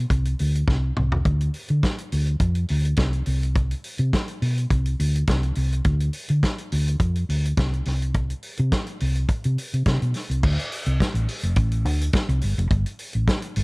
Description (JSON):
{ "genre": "disco", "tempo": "105 BPM", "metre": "4/4", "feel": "straight", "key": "D dorian", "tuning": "A4 = 440 Hz", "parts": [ { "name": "hollow-body short-scale fingered electric bass", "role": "bass", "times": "0.0-13.6 s", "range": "F1 to D3", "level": "-21 LUFS", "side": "equal", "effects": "none" }, { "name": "warm soul drum kit", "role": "drums", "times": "0.1-13.6 s", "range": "crash cymbal, hi-hat, kick drum, snare drum, toms", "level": "-24 LUFS", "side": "equal", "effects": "none" } ], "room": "little or no reverb", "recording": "dark, warm production", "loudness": "-20 LUFS", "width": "side -30 dB against mid", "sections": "0.0-10.4 A section; 10.4-13.6 B section", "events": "drum fill 0.7-1.3", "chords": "none", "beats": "0.10 0.68 | 1.25 1.83 2.41 2.98 | 3.56 4.13 4.71 5.28 | 5.86 6.43 7.01 7.58 | 8.15 8.72 9.29 9.87 | 10.44 11.01 11.57 12.14 | 12.71 13.28" }